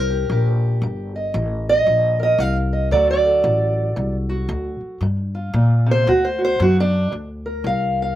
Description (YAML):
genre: acoustic country blues, solo or duo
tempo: 114 BPM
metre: 4/4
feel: swing 61% on 8ths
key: G minor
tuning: A4 = 440 Hz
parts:
  - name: fingerpicked steel-string acoustic guitar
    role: melody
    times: 0.0-8.2 s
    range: G2 to F5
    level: -19 LUFS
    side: right 1 dB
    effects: slapback echo
  - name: upright bass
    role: bass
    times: 0.0-8.2 s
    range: G1 to Bb2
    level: -20 LUFS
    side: left 1 dB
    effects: none
room: little or no reverb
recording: recorded outdoors, with no room sound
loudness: -16 LUFS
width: side -13 dB against mid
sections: 0.0-7.1 A section; 7.1-8.2 B section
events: steel-string acoustic guitar solo 0.0-7.1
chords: 0.0 Eb; 2.9 D7; 5.0 Gm7; 6.1 D; 7.1 Gm7